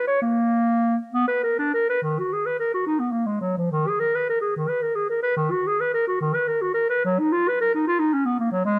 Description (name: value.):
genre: classical, baroque-style fantasia for unaccompanied clarinet.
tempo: 65-77 BPM (dotted quarters).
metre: 6/8.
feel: rubato.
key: Eb minor.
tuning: A4 = 438 Hz.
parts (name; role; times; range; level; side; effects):
clear clarinet; solo; 0.0-8.8 s; Eb3 to Db5; -23 LUFS; equal; none.
room: light reverb.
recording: close, detailed microphones.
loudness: -23 LUFS.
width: mono.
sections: 0.0-2.0 A section; 2.0-8.8 A section.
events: none.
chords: none.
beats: | 0.23 1.13 | 2.04 2.86 | 3.73 4.55 | 5.36 6.19 | 7.04 7.87 | 8.66.